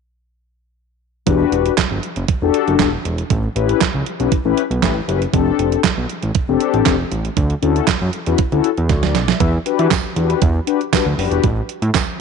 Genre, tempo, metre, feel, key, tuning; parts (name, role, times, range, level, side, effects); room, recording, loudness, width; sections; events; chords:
early-eighties boogie funk; 118 BPM; 4/4; straight; A4 = 440 Hz
mellow synth brass; accompaniment; 1.3-11.4 s; C4 to E5; -19 LUFS; left 12 dB; chorus
fat analog bass; bass; 1.3-11.9 s; E1 to E3; -19 LUFS; right 1 dB
crisp 8-bit digital drum machine; drums; 1.3-12.1 s; handclaps, hi-hat, kick drum, snare drum; -19 LUFS; right 6 dB
tambourine; percussion; 9.9-12.1 s; -33 LUFS; right 16 dB
light reverb; 1960s-style stereo with parts hard left and right, nothing above 10.8 kHz; -15 LUFS; side -5 dB against mid
1.3-9.4 A section; 9.4-12.2 B section
drum fill 8.9-9.4
1.3 Em7; 3.3 A7; 5.3 F69; 7.4 Dmaj9; 9.4 Em7; 11.4 N.C.